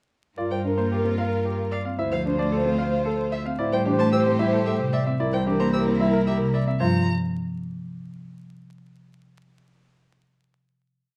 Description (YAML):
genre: classical, minimalist pattern music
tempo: 112 BPM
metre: 3/4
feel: straight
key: G dorian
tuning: A4 = 438 Hz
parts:
  - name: bright grand piano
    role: melody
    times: 0.4-7.1 s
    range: G4 to F5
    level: -33 LUFS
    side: equal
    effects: none
  - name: warm French horn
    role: second line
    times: 0.4-6.6 s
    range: Bb4 to C5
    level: -30 LUFS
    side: equal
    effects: none
  - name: rich studio violin section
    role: sustained chords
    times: 0.4-6.6 s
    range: E4 to C5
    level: -38 LUFS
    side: equal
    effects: none
  - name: dark baby grand piano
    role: arpeggios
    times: 0.4-7.1 s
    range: C4 to C5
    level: -31 LUFS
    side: equal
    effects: none
  - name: clear cello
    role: bass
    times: 0.4-7.1 s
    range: C2 to A2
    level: -31 LUFS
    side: equal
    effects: none
  - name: marimba with medium mallets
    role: accompaniment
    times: 0.5-7.1 s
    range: C3 to C4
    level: -29 LUFS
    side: equal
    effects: none
  - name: rich violin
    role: arpeggios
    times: 0.5-7.1 s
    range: E5 to E6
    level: -36 LUFS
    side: equal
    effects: none
room: moderate large studio reverb, RT60 1.0 s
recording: dark, warm production, vinyl crackle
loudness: -24 LUFS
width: mono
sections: 0.4-6.8 A section; 6.8-8.4 final chord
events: none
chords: 0.4 Gm7; 2.0 Dm7; 3.6 Am7; 5.2 C7; 6.8 Gm7